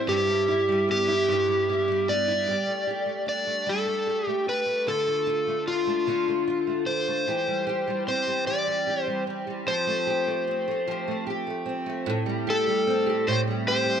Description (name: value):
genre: pop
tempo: 50 BPM (dotted quarters)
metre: 6/8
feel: straight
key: unclear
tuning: A4 = 439 Hz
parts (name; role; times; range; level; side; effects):
- overdriven slide guitar; melody; 0.0-14.0 s; F4 to D5; -24 LUFS; left 1 dB; none
- picked steel-string acoustic guitar; accompaniment; 0.0-14.0 s; G2 to G4; -28 LUFS; right 2 dB; double-tracked left and right
room: light reverb, small room ambience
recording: none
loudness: -23 LUFS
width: side -8 dB against mid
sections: 0.0-2.5 A section; 2.5-12.1 B section; 12.1-14.0 A section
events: none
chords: 0.1 Em/G; 2.5 Gsus2; 4.9 Dm; 7.3 C/E; 9.7 Fadd9; 12.1 Am7